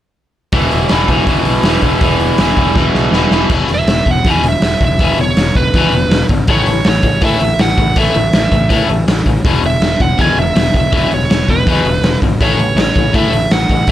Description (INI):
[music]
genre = punk rock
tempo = 162 BPM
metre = 4/4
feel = straight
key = unclear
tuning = A4 = 442 Hz
[part]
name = overdriven electric guitar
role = riff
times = 0.5-3.5 s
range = E2 to E3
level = -18 LUFS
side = right 14 dB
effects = none
[part]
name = raw garage guitar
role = riff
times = 0.5-13.9 s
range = E2 to A3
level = -16 LUFS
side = left 6 dB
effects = overdrive
[part]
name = fuzz picked electric bass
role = bass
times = 0.5-13.9 s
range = E1 to A2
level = -17 LUFS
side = equal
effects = overdrive
[part]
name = raw garage drum kit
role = drums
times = 0.5-13.9 s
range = crash cymbal, hi-hat, kick drum, snare drum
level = -14 LUFS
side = equal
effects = none
[part]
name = dark smooth lead guitar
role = melody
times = 3.7-13.9 s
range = B4 to G#5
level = -17 LUFS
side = right 4 dB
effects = overdrive
[sound]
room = little or no reverb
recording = none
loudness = -10 LUFS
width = side -12 dB against mid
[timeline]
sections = 0.5-3.5 A section; 3.5-13.9 B section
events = drum fill 2.8-3.5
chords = 0.5 E5; 6.5 A; 9.4 E5; 12.4 A